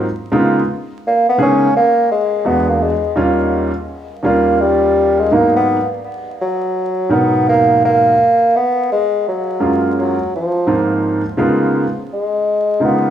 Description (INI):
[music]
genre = hip hop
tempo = 84 BPM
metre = 4/4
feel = swing 62% on 16ths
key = G# dorian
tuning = A4 = 440 Hz
[part]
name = clear upright piano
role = accompaniment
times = 0.0-13.1 s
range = D#2 to A#4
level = -15 LUFS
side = right 1 dB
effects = none
[part]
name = mellow bassoon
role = melody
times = 1.1-13.1 s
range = E#3 to C#4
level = -14 LUFS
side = equal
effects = dub echo
[sound]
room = moderate echo chamber reverb, RT60 1.4 s, studio ambience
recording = echo-heavy mix, vinyl crackle, small room ambience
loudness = -13 LUFS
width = side -10 dB against mid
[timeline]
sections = 0.0-6.0 A section; 6.0-13.1 B section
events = bassoon solo 0.0-6.0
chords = 0.3 C#13; 2.5 E9; 3.2 D#9; 5.3 G#m9; 8.9 F#maj7; 11.0 G#69; 11.7 C#13